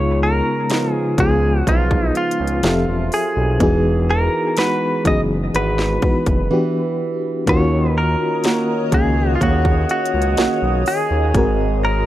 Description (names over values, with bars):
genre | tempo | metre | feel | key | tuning
contemporary R&B | 62 BPM | 4/4 | straight | Eb minor | A4 = 440 Hz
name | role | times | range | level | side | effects
direct-recorded clean electric guitar | melody | 0.0-12.1 s | F4 to D#5 | -21 LUFS | equal | tape echo
FM electric piano with tremolo | accompaniment | 0.0-12.1 s | Ab2 to F5 | -21 LUFS | left 2 dB | none
flamenco guitar | arpeggios | 0.0-12.1 s | Ab2 to F#4 | -25 LUFS | right 4 dB | tape echo
smooth synth bass | bass | 0.0-12.0 s | E1 to Eb2 | -19 LUFS | equal | none
trap drum kit | drums | 0.7-11.6 s | hi-hat, kick drum, snare drum | -20 LUFS | equal | none
glassy FM pad | sustained chords | 8.2-12.1 s | Ab4 to Eb6 | -26 LUFS | equal | ensemble chorus, built-in reverb
room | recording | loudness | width
little or no reverb | dry, gritty hardware recording | -15 LUFS | side -14 dB against mid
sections
0.0-12.1 A section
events
break 6.5-7.5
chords
0.0 Db9; 2.6 Fmaj9; 3.6 Emaj9; 6.5 Em7; 7.5 Ebm7; 11.3 Ab7